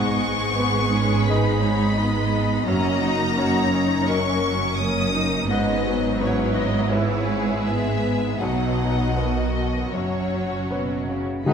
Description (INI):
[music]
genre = cinematic, emotional film score for orchestra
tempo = 76-87 BPM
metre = 4/4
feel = rubato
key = unclear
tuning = A4 = 441 Hz
[part]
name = rich symphonic violin section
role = melody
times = 0.0-11.5 s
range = B4 to D#6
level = -27 LUFS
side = left 3 dB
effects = none
[part]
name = warm symphonic violin section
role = second line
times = 0.0-11.5 s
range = C#4 to D#5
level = -28 LUFS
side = left 5 dB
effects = none
[part]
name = bright concert grand piano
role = accompaniment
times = 0.0-11.5 s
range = B1 to E5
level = -28 LUFS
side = left 1 dB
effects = none
[part]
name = rich symphonic viola section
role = accompaniment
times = 0.0-11.3 s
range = D#3 to D#5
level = -27 LUFS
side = right 2 dB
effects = none
[part]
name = rich symphonic double bass section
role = bass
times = 0.0-11.5 s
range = F#1 to B1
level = -28 LUFS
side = right 4 dB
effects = none
[part]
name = warm symphonic cello section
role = bass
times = 0.0-11.5 s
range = F#2 to D#4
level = -26 LUFS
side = right 2 dB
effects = none
[part]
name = tam-tam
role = percussion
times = 11.5 s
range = none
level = -18 LUFS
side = left 3 dB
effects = none
[sound]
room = wet scoring stage reverb, RT60 2.1 s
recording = minimal, uncompressed stereo recording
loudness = -19 LUFS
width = side -7 dB against mid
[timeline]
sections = 0.0-11.5 A section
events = none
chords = 0.0 G#m; 2.7 D#m7/F#; 5.5 E6/G#; 8.4 B; 9.9 F#sus4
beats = 0.59 1.28 1.97 | 2.67 3.38 4.08 4.78 | 5.49 6.20 6.91 7.66 | 8.40 9.15 9.93 10.70 | 11.46